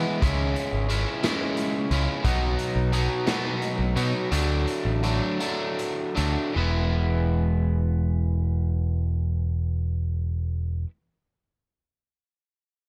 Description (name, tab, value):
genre	indie rock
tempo	50-60 BPM (dotted quarters)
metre	6/8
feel	straight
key	E major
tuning	A4 = 441 Hz
part	overdriven semi-hollow guitar	riff	0.0-10.9 s	B2 to E4	-29 LUFS	equal	none
part	modern bright picked electric bass	bass	0.0-10.8 s	E1 to B2	-27 LUFS	equal	none
part	raw garage drum kit	drums	0.2-6.3 s	hi-hat, kick drum, snare drum	-34 LUFS	equal	none
room	light reverb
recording	none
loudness	-25 LUFS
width	mono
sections	0.0-6.6 A section; 6.6-11.4 B section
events	slowing down 2.2-6.6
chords	0.2 C#m; 2.2 B; 4.3 D; 6.6 E